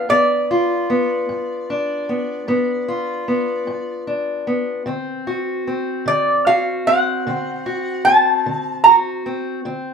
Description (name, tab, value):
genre	acoustic country blues, solo or duo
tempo	50 BPM (dotted quarters)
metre	12/8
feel	straight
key	unclear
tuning	A4 = 438 Hz
part	lap resonator guitar	melody	0.0-8.9 s	D5 to Bb5	-14 LUFS	right 1 dB	none
part	fingerpicked steel-string acoustic guitar	accompaniment	0.0-9.9 s	G2 to F#4	-21 LUFS	left 1 dB	none
room	moderate large studio reverb, RT60 0.9 s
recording	band playing live in one room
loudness	-17 LUFS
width	side -6 dB against mid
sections	0.0-9.9 A section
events	none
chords	0.0 G7; 4.9 D7